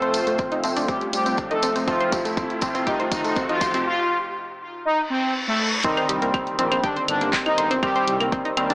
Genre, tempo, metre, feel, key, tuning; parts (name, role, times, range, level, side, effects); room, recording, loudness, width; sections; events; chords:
melodic techno; 121 BPM; 4/4; straight; C dorian; A4 = 440 Hz
analog synth brass; melody; 0.0-8.1 s; A3 to A4; -24 LUFS; equal; chorus, tape echo
soft supersaw; second line; 0.0-8.1 s; D3 to A3; -35 LUFS; equal
sweeping resonant pad; sustained chords; 0.0-3.8 s; A3 to C5; -32 LUFS; equal; chorus, sidechain pumping
analog pluck; arpeggios; 0.0-8.7 s; A3 to C5; -26 LUFS; equal; chorus, sidechain pumping, dub echo
sync-sweep polysynth; stabs; 0.0-8.7 s; Eb3 to C4; -26 LUFS; equal; chorus, sidechain pumping, dub echo
overtone-sweeping drone; drone; 0.1-8.7 s; C3; -44 LUFS; equal
punchy analog drum machine; drums; 0.0-8.7 s; claves, handclaps, hi-hat; -28 LUFS; equal; high-pass filter on hats, high-pass filter on perc, high-pass filter on snare, high-pass filter on room
riser, reverse cymbal and impact; sound effects; 0.2-7.8 s; -30 LUFS; equal
tambourine; percussion; 0.1-3.8 s; -34 LUFS; equal
electronic kick drum; drums; 0.4-8.4 s; -28 LUFS; equal
dark detuned saw bass; bass; 6.1-8.7 s; G1 to Eb2; -30 LUFS; equal; tube saturation, sidechain pumping
moderate lush hall reverb, RT60 1.7 s; small speaker sound; -20 LUFS; side -27 dB against mid
0.0-5.8 A section; 5.8-8.7 B section
build-up 0.0-5.8; drum fill 0.0-3.9; filter sweep on synth arpeggio sound 0.0-5.8; filter sweep on analog polysynth 0.0-5.8; filter sweep on supersaw synth 0.0-5.8; riser 0.2-3.9; reverse cymbal 5.1-5.8; drop 5.8-8.7; impact 5.8-7.8
0.0 F; 5.8 Cm